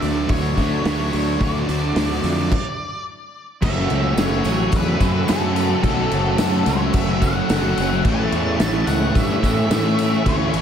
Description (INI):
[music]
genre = rock, shoegaze and dream pop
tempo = 108 BPM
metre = 4/4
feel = straight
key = unclear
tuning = A4 = 442 Hz
[part]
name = octave-fuzz lead guitar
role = melody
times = 0.0-10.6 s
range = A4 to A5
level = -27 LUFS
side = equal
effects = distortion, ping-pong delay
[part]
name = cranked stack guitar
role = riff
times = 0.0-10.6 s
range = A2 to F#4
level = -27 LUFS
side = equal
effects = overdrive, wide subtle chorus
[part]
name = crunchy overdriven guitar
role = riff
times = 0.0-10.6 s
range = A2 to F#4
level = -25 LUFS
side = right 6 dB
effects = reverse reverb
[part]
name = thick fuzz guitar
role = riff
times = 0.0-10.6 s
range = F#2 to D4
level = -26 LUFS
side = left 6 dB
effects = distortion, lush chorus
[part]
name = fuzz fingered electric bass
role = bass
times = 0.0-10.6 s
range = F#1 to A2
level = -23 LUFS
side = equal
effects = overdrive
[part]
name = loose indie drum kit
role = drums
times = 0.0-10.6 s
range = crash cymbal, hi-hat, kick drum, snare drum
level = -23 LUFS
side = equal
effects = none
[part]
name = hollow soft pad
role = sustained chords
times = 3.6-10.6 s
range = A4 to E6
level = -29 LUFS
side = equal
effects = ensemble chorus
[part]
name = tambourine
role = percussion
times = 4.2-10.6 s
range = none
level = -40 LUFS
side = right 5 dB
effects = none
[sound]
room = moderate lush hall reverb, RT60 1.8 s, small room ambience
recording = dreamy mix soaked in reverb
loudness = -17 LUFS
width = side -8 dB against mid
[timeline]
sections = 0.0-3.6 A section; 3.6-10.6 B section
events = stop 2.5-3.6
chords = 0.0 Dmaj7; 3.6 F#m7; 8.0 A